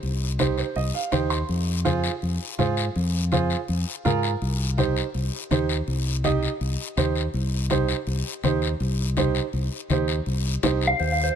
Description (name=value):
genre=latin, cumbia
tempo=164 BPM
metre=4/4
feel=straight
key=C minor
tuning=A4 = 439 Hz
part: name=fingered electric bass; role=bass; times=0.0-11.3 s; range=C2 to Ab2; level=-25 LUFS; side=left 1 dB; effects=none
part: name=congas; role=percussion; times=0.0-11.2 s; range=none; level=-28 LUFS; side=left 7 dB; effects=none
part: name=guiro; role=percussion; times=0.0-11.4 s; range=none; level=-33 LUFS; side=left 8 dB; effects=none
part: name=clear upright piano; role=accompaniment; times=0.4-10.9 s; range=Eb4 to C6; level=-27 LUFS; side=right 7 dB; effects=none
part: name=mellow electric guitar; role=melody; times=10.9-11.3 s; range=C5 to F5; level=-21 LUFS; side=equal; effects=spring reverb
room=light reverb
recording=none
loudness=-22 LUFS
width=side -8 dB against mid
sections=0.0-10.3 A section; 10.3-11.4 B section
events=upright piano fill 0.4-1.5; clean electric guitar solo 10.3-11.4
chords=0.0 Cm; 1.5 Fm; 4.4 Cm